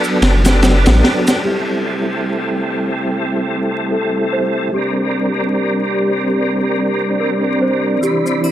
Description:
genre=trip hop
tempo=73 BPM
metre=4/4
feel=swing 57% on 16ths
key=A dorian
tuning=A4 = 441 Hz
part: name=tonewheel organ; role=accompaniment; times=0.0-8.5 s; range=E3 to B5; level=-17 LUFS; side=equal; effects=chorus vibrato, fast rotary speaker, harmonic tremolo, low-pass filter, tape echo
part: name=maracas and triangle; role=percussion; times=0.0-1.4, 8.0-8.5 s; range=none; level=-30 LUFS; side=right 3 dB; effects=none
part: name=soft dub sub bass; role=bass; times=0.2-1.0 s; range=F#1 to A1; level=-12 LUFS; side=equal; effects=none
part: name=crunchy breakbeat drum kit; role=drums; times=0.2-1.4 s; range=ride cymbal, snare drum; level=-18 LUFS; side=equal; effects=none
part: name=dark analog pad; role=sustained chords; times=1.4-8.5 s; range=C4 to G5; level=-22 LUFS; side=equal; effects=chorus
part: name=small celesta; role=arpeggios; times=1.4-8.5 s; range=G4 to C5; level=-23 LUFS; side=equal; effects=vintage 12-bit sampler grit, low-pass filter, ping-pong delay
room=light reverb, studio reverb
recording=vinyl crackle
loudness=-14 LUFS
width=side -12 dB against mid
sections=0.0-1.5 A section; 1.5-8.5 B section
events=break 0.0-1.5; filter sweep on celesta 1.5-8.5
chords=0.0 Bm7; 1.5 Am7; 4.7 Bb69

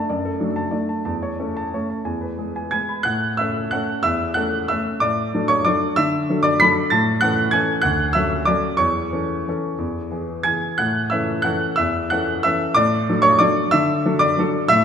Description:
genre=classical, piano waltz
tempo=173-207 BPM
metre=3/4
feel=rubato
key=A major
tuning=A4 = 445 Hz
part: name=warm baby grand piano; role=solo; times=0.0-14.8 s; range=D2 to B6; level=-18 LUFS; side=equal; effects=none
room=wet concert hall reverb, RT60 2.4 s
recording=minimal, uncompressed stereo recording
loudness=-18 LUFS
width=side -7 dB against mid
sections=0.0-3.1 A section; 3.1-14.8 B section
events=none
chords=0.0 D/F#; 1.1 A/E; 2.1 E; 3.1 A; 5.0 D/A; 6.9 A; 7.8 Dmaj7; 8.8 A/E; 9.8 E; 10.8 A; 12.8 D/A

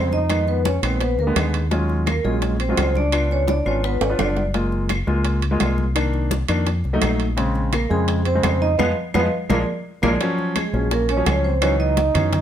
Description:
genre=Afro-Cuban jazz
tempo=170 BPM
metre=4/4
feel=straight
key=Bb minor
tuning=A4 = 440 Hz
part: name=vibraphone with medium hard mallets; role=melody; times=0.0-4.4, 7.7-12.4 s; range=Ab4 to F5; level=-24 LUFS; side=right 1 dB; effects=none
part: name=mellow trombone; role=second line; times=0.0-4.4, 7.7-12.4 s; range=Ab3 to Eb4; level=-27 LUFS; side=right 2 dB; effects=none
part: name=warm concert grand piano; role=accompaniment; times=0.0-12.3 s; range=Db3 to F4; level=-24 LUFS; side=left 1 dB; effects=none
part: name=fingered electric bass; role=bass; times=0.0-12.4 s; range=Gb1 to Gb2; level=-22 LUFS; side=equal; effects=none
part: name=congas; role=percussion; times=0.1-12.4 s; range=none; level=-29 LUFS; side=equal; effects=none
part: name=bongos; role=percussion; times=0.3-12.4 s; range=none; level=-31 LUFS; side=left 10 dB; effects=none
part: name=claves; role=percussion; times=0.3-12.3 s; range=none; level=-31 LUFS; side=left 3 dB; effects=none
part: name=timbales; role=percussion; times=0.3-12.4 s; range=none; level=-28 LUFS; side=right 8 dB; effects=none
room=light reverb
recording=none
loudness=-18 LUFS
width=side -10 dB against mid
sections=0.0-10.2 A section; 10.2-12.4 B section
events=drum fill 3.5-4.5, 9.1-10.2; band accent 8.8-10.2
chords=0.3 Fm7b5; 1.0 Bb7b9; 1.7 Ebm11; 3.1 Db7b9; 4.5 Gbmaj9; 6.0 Cm7; 6.7 F7b9; 7.4 Bbm9; 8.8 Fm7b5; 9.5 Bb7; 10.2 Gbmaj9#11; 11.6 Dbm11

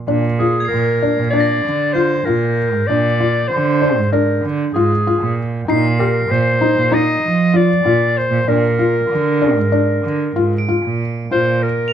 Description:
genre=contemporary instrumental, chamber music in an uneven meter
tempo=192 BPM (eighths)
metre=9/8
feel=straight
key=Bb mixolydian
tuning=A4 = 440 Hz
part: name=felt-muted upright piano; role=arpeggios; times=0.1-11.6 s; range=D4 to G4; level=-19 LUFS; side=left 3 dB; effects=none
part: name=warm cello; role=bass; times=0.1-11.9 s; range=Ab2 to F3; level=-18 LUFS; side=right 4 dB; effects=none
part: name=clear clarinet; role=melody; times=0.4-11.9 s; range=Ab4 to Eb5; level=-18 LUFS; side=left 2 dB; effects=none
part: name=crotales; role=texture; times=0.6-11.9 s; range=G6 to F7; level=-28 LUFS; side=left 1 dB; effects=none
room=moderate studio reverb, RT60 0.6 s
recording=dark, warm production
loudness=-14 LUFS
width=side -9 dB against mid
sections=0.1-11.3 A section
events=none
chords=0.1 Bb7; 5.7 Cm/Bb; 8.5 Bb7; 11.3 Bb

